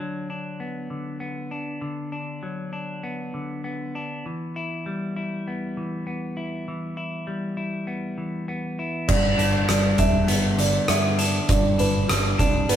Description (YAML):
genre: post-rock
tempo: 99 BPM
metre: 4/4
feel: straight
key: E minor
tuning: A4 = 440 Hz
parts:
  - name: clean electric guitar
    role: arpeggios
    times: 0.0-12.8 s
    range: G2 to E4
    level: -27 LUFS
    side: left 2 dB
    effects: none
  - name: felt-muted upright piano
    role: arpeggios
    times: 9.1-12.8 s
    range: B4 to E5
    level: -26 LUFS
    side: right 4 dB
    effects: none
  - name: modern bright picked electric bass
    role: bass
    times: 9.1-12.8 s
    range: E1 to G2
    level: -25 LUFS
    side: equal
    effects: none
  - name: oversized low-tuned drum kit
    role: drums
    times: 9.1-12.8 s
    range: crash cymbal, hi-hat, kick drum, rim click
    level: -22 LUFS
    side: equal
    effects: none
room: wet large studio reverb, RT60 1.5 s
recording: band playing live in one room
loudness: -23 LUFS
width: side -10 dB against mid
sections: 0.0-9.1 A section; 9.1-12.8 A section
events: none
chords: 0.0 Bm/D; 4.3 Em; 9.1 G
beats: 0.00 0.61 1.22 | 1.83 2.44 3.04 3.65 | 4.26 4.86 5.47 6.07 | 6.68 7.28 7.88 8.49 | 9.09 9.69 10.29 10.89 | 11.49 12.09 12.70